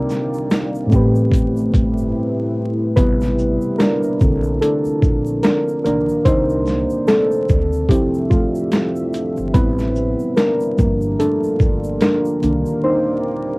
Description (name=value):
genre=lo-fi hip hop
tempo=73 BPM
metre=4/4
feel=swing 57% on 16ths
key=A phrygian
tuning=A4 = 440 Hz
part: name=muted felt-like synth keys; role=accompaniment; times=0.0-13.6 s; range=A2 to D5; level=-17 LUFS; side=equal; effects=chorus, cassette tape, low-pass filter
part: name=deep dark ambient pad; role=sustained chords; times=0.0-13.6 s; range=C3 to E5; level=-28 LUFS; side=equal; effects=chorus, built-in reverb, low-pass filter, cassette tape
part: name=boom bap sampler-style drum kit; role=drums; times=0.1-12.6 s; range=hi-hat, kick drum, shaker, snare drum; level=-17 LUFS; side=equal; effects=overdrive, cassette tape
part: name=egg shaker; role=percussion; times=0.1-12.8 s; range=none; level=-50 LUFS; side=left 3 dB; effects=none
part: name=upright bass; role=bass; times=0.9-12.6 s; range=G1 to D2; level=-23 LUFS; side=equal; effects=none
room=moderate booth ambience, RT60 0.3 s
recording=home recording on cassette, vinyl crackle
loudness=-15 LUFS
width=side -25 dB against mid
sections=0.0-3.0 A section; 3.0-13.6 B section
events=break 2.1-3.0; synth keys solo 3.0-13.6; drums muted 12.8-13.6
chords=0.0 Cm9; 0.9 Am9; 4.2 Bbmaj7; 5.8 Cm9; 7.5 Dm9; 9.5 Am9; 10.8 Gm9; 12.4 Cm9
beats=0.50 1.32 2.15 | 2.97 3.79 4.61 5.43 | 6.26 7.08 7.90 8.72 | 9.54 10.37 11.19 12.01 | 12.83